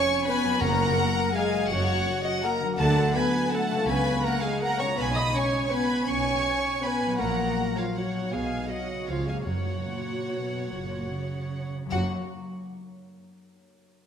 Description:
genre	classical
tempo	138-181 BPM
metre	3/4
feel	rubato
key	F# major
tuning	A4 = 440 Hz
part	warm chamber violin section	melody	0.0-12.1 s	E#5 to D#6	-32 LUFS	left 2 dB	none
part	warm chamber violin section	second line	0.0-12.1 s	F#4 to B5	-31 LUFS	left 2 dB	none
part	dark chamber viola section	accompaniment	0.0-12.1 s	E#4 to D#5	-31 LUFS	right 2 dB	none
part	dark French horn section	sustained chords	0.0-12.1 s	E#3 to D#4	-30 LUFS	left 1 dB	none
part	concert harp	arpeggios	0.0-12.1 s	E#2 to D5	-35 LUFS	left 6 dB	none
part	dark chamber cello section	bass	0.6-12.1 s	F#2 to D3	-33 LUFS	right 2 dB	none
part	dark chamber double bass section	bass	0.6-12.1 s	F#1 to D2	-34 LUFS	right 3 dB	none
part	timpani	percussion	0.6-1.1, 9.5-12.1 s	F#2	-37 LUFS	right 1 dB	none
room	wet scoring stage reverb, RT60 1.8 s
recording	none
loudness	-24 LUFS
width	side -8 dB against mid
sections	0.0-11.9 A section; 11.9-13.1 B section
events	slowing down 8.9-11.9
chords	0.0 C#7/E#; 0.6 F#; 2.8 D; 3.9 C#; 5.0 C#7/B; 7.2 F#/A#; 8.3 B; 9.1 C#7; 9.5 F#

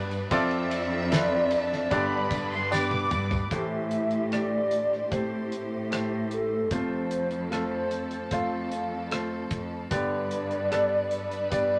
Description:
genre	pop ballad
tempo	75 BPM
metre	4/4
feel	straight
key	A minor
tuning	A4 = 440 Hz
part	clear concert grand piano	accompaniment	0.0-11.8 s	G2 to D5	-33 LUFS	equal	none
part	rich studio string section	sustained chords	0.0-11.8 s	F3 to E5	-39 LUFS	equal	none
part	rich symphonic cello section	bass	0.0-11.8 s	F2 to A2	-36 LUFS	equal	none
part	damped 70s drum kit	drums	0.1-11.7 s	hi-hat, kick drum, ride cymbal, rim click, snare drum, toms	-35 LUFS	equal	none
part	tambourine	percussion	0.1-3.5 s	none	-50 LUFS	equal	none
part	hollow clarinet-like synth lead	melody	0.3-11.8 s	A4 to F5	-31 LUFS	equal	chorus
part	warm studio violin section	second line	1.5-3.5 s	A5 to D6	-34 LUFS	equal	none
room	moderate studio reverb, RT60 0.7 s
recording	none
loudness	-28 LUFS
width	mono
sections	0.0-3.5 A section; 3.5-11.8 B section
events	drum fill 2.7-3.5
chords	0.3 Dm7/F; 1.9 G; 3.5 Am7; 6.7 F; 9.9 G

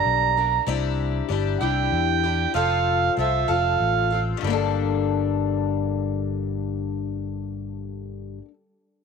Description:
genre	folk rock and heartland rock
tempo	64 BPM (dotted quarters)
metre	6/8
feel	straight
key	G dorian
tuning	A4 = 440 Hz
part	overdriven harmonica	melody	0.0-4.2 s	E5 to Bb5	-23 LUFS	right 12 dB	none
part	picked twelve-string acoustic guitar	accompaniment	0.0-8.5 s	G2 to A4	-26 LUFS	left 14 dB	none
part	fingered electric bass	bass	0.1-8.4 s	F1 to E2	-27 LUFS	right 1 dB	none
room	light reverb, studio ambience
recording	1960s-style stereo with parts hard left and right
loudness	-21 LUFS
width	side -5 dB against mid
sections	0.0-4.4 A section; 4.4-8.2 B section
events	none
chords	0.0 Gm; 0.7 Cadd9; 2.6 F; 4.4 Gmadd9

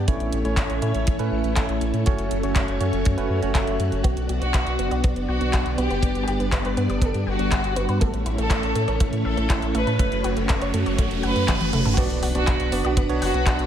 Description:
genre	italo disco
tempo	121 BPM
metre	4/4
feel	straight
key	B minor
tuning	A4 = 444 Hz
part	string machine, full ensemble	sustained chords	0.0-13.7 s	G3 to B5	-27 LUFS	equal	ensemble chorus
part	barky tine electric piano	stabs	0.0-4.0, 12.0-13.7 s	A3 to E5	-28 LUFS	right 2 dB	medium stereo tremolo, ping-pong delay
part	round analog bass	bass	0.0-13.7 s	E1 to A2	-26 LUFS	equal	none
part	house drum kit	drums	0.1-13.7 s	crash cymbal, handclaps, hi-hat, toms	-29 LUFS	equal	overdrive
part	kick drum	drums	0.1-13.6 s	none	-21 LUFS	equal	none
part	rich chamber violin section	melody	4.0-13.6 s	F#4 to C#5	-28 LUFS	equal	ping-pong delay
part	analog pluck	arpeggios	4.0-13.6 s	A3 to G5	-32 LUFS	equal	chorus, vintage 12-bit sampler grit, ping-pong delay
part	riser and impact	sound effects	9.5-13.7 s	none	-34 LUFS	right 1 dB	none
room	moderate plate reverb, RT60 1.3 s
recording	dreamy mix soaked in reverb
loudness	-20 LUFS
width	side -10 dB against mid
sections	0.0-12.0 A section; 12.0-13.7 B section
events	riser 9.5-12.0; drum fill 11.5-12.0; impact 12.0-13.7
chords	0.1 A; 2.1 F#m; 4.0 Bm; 6.0 G; 8.0 A; 10.0 F#m; 12.0 Bm

